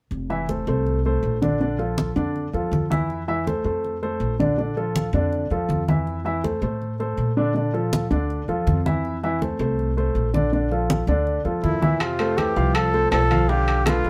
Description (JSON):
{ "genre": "Afro-Cuban jazz", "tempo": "162 BPM", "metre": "4/4", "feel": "straight", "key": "F major", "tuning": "A4 = 439 Hz", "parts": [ { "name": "upright bass", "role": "bass", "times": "0.1-14.1 s", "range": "F1 to Bb2", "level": "-28 LUFS", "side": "equal", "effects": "none" }, { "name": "congas", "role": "percussion", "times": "0.1-14.1 s", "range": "none", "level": "-28 LUFS", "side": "equal", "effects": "none" }, { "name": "warm upright piano", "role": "accompaniment", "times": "0.3-14.1 s", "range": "D3 to F5", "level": "-26 LUFS", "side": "equal", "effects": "none" }, { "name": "breathy trumpet", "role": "melody", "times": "11.6-14.1 s", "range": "E4 to A4", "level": "-25 LUFS", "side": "equal", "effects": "none" }, { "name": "breathy tenor saxophone", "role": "second line", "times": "11.6-14.1 s", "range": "Bb2 to F3", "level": "-32 LUFS", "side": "equal", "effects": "none" }, { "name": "bongos", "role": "percussion", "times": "12.0-14.1 s", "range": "none", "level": "-34 LUFS", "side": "equal", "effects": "none" }, { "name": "timbales", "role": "percussion", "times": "12.0-14.1 s", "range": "none", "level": "-31 LUFS", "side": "equal", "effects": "none" } ], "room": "light reverb", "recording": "band playing live in one room", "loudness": "-23 LUFS", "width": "mono", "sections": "0.1-12.0 A section; 12.0-14.1 B section", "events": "none", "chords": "0.1 Fmaj7; 1.6 Bbmaj7; 3.1 Fmaj7; 4.6 Bbmaj7; 6.1 Fmaj7; 7.6 Bbmaj7; 9.0 Fmaj7; 10.5 Bbmaj7; 12.0 Fmaj7; 13.5 Bm7b5", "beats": "| 0.12 0.49 0.86 1.23 | 1.61 1.98 2.35 2.72 | 3.09 3.47 3.84 4.21 | 4.58 4.95 5.33 5.70 | 6.07 6.44 6.81 7.18 | 7.55 7.93 8.30 8.67 | 9.04 9.41 9.78 10.15 | 10.53 10.90 11.27 11.64 | 12.01 12.38 12.76 13.13 | 13.50 13.87" }